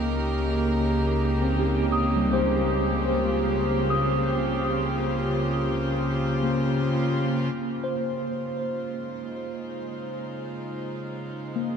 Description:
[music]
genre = ambient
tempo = 61 BPM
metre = 3/4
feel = straight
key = Db lydian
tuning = A4 = 440 Hz
[part]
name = warm chamber string section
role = sustained chords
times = 0.0-11.8 s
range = Db3 to C5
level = -26 LUFS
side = equal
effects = none
[part]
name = tine electric piano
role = arpeggios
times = 0.0-11.8 s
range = G3 to Eb6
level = -28 LUFS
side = equal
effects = medium stereo tremolo, diffuse ambient delay
[part]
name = deep rumbling drone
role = bass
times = 0.0-7.5 s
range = Db2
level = -30 LUFS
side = equal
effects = built-in reverb
[sound]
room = wet cathedral reverb, RT60 6.0 s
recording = in a vast, echoing space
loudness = -23 LUFS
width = side -7 dB against mid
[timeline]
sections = 0.0-7.5 A section; 7.5-11.8 B section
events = fade-in on string section 7.5-11.8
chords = 0.0 Eb/Db; 7.5 Dbmaj7

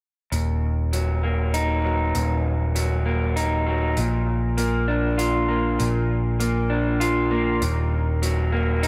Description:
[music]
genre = post-rock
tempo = 99 BPM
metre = 3/4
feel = straight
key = Eb minor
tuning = A4 = 440 Hz
[part]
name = electric guitar through a small old amp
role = arpeggios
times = 0.3-8.9 s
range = Eb2 to F4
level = -26 LUFS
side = equal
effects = tape echo, slapback echo
[part]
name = picked electric bass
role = bass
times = 0.3-8.9 s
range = Eb1 to Bb1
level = -26 LUFS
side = equal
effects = none
[part]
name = hi-hat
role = drums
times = 0.3-8.9 s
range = none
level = -36 LUFS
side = equal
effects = none
[sound]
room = moderate lush hall reverb, RT60 2.6 s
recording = big arena sound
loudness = -23 LUFS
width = mono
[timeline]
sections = 0.3-8.9 A section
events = none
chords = 0.3 Ebm; 4.0 Bb; 7.6 Ebm

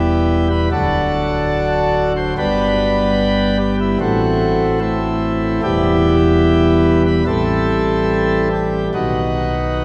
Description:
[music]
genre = classical, chorale-style piece for pipe organ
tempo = 73 BPM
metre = 4/4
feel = straight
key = E minor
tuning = A4 = 441 Hz
[part]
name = pipe organ, principal chorus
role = solo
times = 0.0-9.8 s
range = D1 to C5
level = -16 LUFS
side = equal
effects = none
[sound]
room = wet church reverb, RT60 3.2 s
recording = none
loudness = -16 LUFS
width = mono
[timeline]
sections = 0.0-9.8 A section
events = none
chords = 0.0 Em; 0.7 D; 2.4 G; 4.0 Am; 5.6 Em; 7.3 Am7; 8.9 B

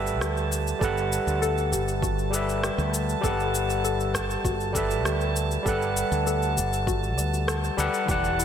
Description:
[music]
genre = sunset chillout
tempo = 99 BPM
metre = 4/4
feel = straight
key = G major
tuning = A4 = 439 Hz
[part]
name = overdriven tine electric piano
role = accompaniment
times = 0.0-8.4 s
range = E3 to F#5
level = -27 LUFS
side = moving between left 4 dB and right 4 dB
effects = auto-pan, ping-pong delay
[part]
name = soft round pluck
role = arpeggios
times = 0.0-8.4 s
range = E4 to D5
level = -33 LUFS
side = left 4 dB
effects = wide subtle chorus, ping-pong delay
[part]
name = mellow fretless electric bass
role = bass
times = 0.0-8.4 s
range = E1 to D2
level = -29 LUFS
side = right 1 dB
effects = none
[part]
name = drifting glass-harmonics texture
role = texture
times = 0.0-8.4 s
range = A5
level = -34 LUFS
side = right 5 dB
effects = chorus, built-in reverb
[part]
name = electronic shaker and rim click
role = drums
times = 0.1-8.4 s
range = none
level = -33 LUFS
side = left 2 dB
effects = gated reverb
[part]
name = electronic kick drum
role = drums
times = 0.8-8.2 s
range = none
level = -32 LUFS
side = right 1 dB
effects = none
[sound]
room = moderate lush hall reverb, RT60 2.8 s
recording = bright 1980s-style digital production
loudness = -23 LUFS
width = side -9 dB against mid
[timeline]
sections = 0.0-8.4 A section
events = filter sweep on synth pluck 0.0-8.4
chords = 0.0 Gmaj9

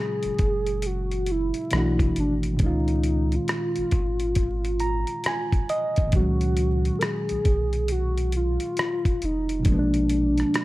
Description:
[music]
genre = lo-fi hip hop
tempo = 68 BPM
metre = 4/4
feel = swing 64% on 16ths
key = unclear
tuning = A4 = 439 Hz
[part]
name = warbly nostalgic lead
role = melody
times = 0.0-10.6 s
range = D4 to Bb4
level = -27 LUFS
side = equal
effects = chorus, low-pass filter
[part]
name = barky reed electric piano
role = accompaniment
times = 0.0-10.6 s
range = Bb2 to Bb5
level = -28 LUFS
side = right 1 dB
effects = overdrive, low-pass filter
[part]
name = soft dub sub bass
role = bass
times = 0.2-10.4 s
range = F1 to Db2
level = -26 LUFS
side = equal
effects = none
[part]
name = dusty soul sampler-style drum kit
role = drums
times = 0.2-10.6 s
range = hi-hat, kick drum, rim click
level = -25 LUFS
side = equal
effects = none
[sound]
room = digital ambience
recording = vinyl crackle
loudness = -22 LUFS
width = side -17 dB against mid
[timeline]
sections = 0.0-10.6 A section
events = none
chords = 0.0 Ebm7 (rootless); 1.7 Bm7; 2.6 Bbm7; 6.1 Db9sus4; 9.7 Bb7b9

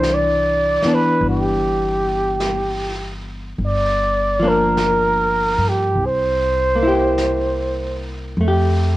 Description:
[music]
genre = jazz ballad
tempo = 50 BPM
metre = 4/4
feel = swing 68% on 8ths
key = C major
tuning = A4 = 438 Hz
[part]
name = mellow flugelhorn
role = melody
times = 0.0-8.0 s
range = G4 to D5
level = -18 LUFS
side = right 1 dB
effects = cassette tape, plate reverb
[part]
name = hollow-body jazz guitar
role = accompaniment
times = 0.0-9.0 s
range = E3 to G4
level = -21 LUFS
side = left 1 dB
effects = cassette tape, plate reverb
[part]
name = upright bass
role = bass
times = 0.0-9.0 s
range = G1 to G2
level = -23 LUFS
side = equal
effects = none
[part]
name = jazz brush drum kit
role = drums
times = 0.0-9.0 s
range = brushed snare drum, hi-hat, snare drum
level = -32 LUFS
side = equal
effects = cassette tape
[sound]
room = moderate studio reverb, RT60 0.6 s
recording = home recording on cassette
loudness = -16 LUFS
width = side -16 dB against mid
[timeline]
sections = 0.0-8.4 A section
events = none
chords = 0.0 Cmaj9; 3.6 Gm7; 6.0 C7; 8.4 Fadd9

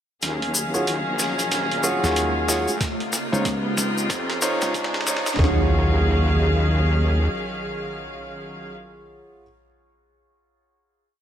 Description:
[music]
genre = glitch hop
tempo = 93 BPM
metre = 4/4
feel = swing 61% on 16ths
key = Eb dorian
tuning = A4 = 437 Hz
[part]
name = rich chamber string section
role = sustained chords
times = 0.2-8.7 s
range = C3 to F5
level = -26 LUFS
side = equal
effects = sidechain pumping
[part]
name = wobble bass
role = bass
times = 0.2-7.3 s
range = Bb1 to Gb2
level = -22 LUFS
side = equal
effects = chorus, tube saturation, high-pass filter
[part]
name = boom bap sampler-style drum kit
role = drums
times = 0.2-5.5 s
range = hi-hat, snare drum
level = -29 LUFS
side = right 1 dB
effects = high-pass filter on snare, small room ambience, high-pass filter on hats
[part]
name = cabasa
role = percussion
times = 0.2-5.4 s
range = none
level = -27 LUFS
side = left 2 dB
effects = none
[part]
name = riser and impact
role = sound effects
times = 1.8-9.5 s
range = none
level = -30 LUFS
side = right 1 dB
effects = none
[part]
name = clear concert grand piano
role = stabs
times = 0.7-9.4 s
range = Eb4 to Db5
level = -28 LUFS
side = right 1 dB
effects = sidechain pumping, low-pass filter, dub echo
[part]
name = slap bass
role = bass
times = 2.0-5.2 s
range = Db2 to F2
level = -27 LUFS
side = equal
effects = none
[part]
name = electronic kick drum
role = drums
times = 2.8-5.5 s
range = none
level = -24 LUFS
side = equal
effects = small room ambience
[sound]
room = light reverb, small room ambience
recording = high-pass filter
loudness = -20 LUFS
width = side -10 dB against mid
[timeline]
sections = 0.2-5.4 build; 5.4-8.0 final chord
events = build-up 0.2-5.4; drum fill 0.2-5.4; filter sweep on grand piano 0.2-5.4; riser 1.8-5.4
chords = 0.2 Ebm11; 2.8 Dbmaj9; 5.4 Ebm11

